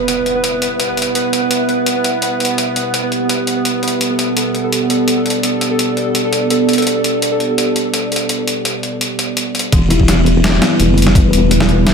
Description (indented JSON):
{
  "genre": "half-time drum and bass",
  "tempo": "168 BPM",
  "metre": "4/4",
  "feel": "half-time",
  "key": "E minor",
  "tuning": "A4 = 440 Hz",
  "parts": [
    { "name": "deep dark ambient pad", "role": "sustained chords", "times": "0.0-11.9 s", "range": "G3 to E5", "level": "-18 LUFS", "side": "right 2 dB", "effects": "chorus, built-in reverb, sidechain pumping" },
    { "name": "pulsing gated texture", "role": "texture", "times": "0.0-9.7 s", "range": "B3 to B4", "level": "-19 LUFS", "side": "equal", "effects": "chorus, built-in reverb" },
    { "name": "boom bap sampler-style drum kit", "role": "drums", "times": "0.1-11.9 s", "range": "hi-hat, snare drum", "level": "-18 LUFS", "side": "left 1 dB", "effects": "none" },
    { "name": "buzzing kalimba", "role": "arpeggios", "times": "9.7-10.7 s", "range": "E3 to E4", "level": "-17 LUFS", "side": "left 4 dB", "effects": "digital delay" },
    { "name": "deep soft wobble bass", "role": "bass", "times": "9.7-11.9 s", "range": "E1 to F#1", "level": "-14 LUFS", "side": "equal", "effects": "chorus" },
    { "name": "electronic kick drum", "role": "drums", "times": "9.7-11.2 s", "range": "none", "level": "-12 LUFS", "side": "equal", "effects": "none" }
  ],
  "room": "moderate lush hall reverb, RT60 1.8 s, digital ambience",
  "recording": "none",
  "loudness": "-12 LUFS",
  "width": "side -6 dB against mid",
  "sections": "0.0-9.7 A section; 9.7-11.9 B section",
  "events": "drop 9.7-11.9",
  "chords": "0.0 Em",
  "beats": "0.08 0.44 0.80 | 1.15 1.51 1.87 2.23 | 2.58 2.94 3.30 3.65 | 4.01 4.37 4.72 5.08 | 5.44 5.80 6.15 6.51 | 6.87 7.22 7.58 7.94 | 8.30 8.65 9.01 9.37 | 9.72 10.08 10.44 10.80 | 11.15 11.51 11.87"
}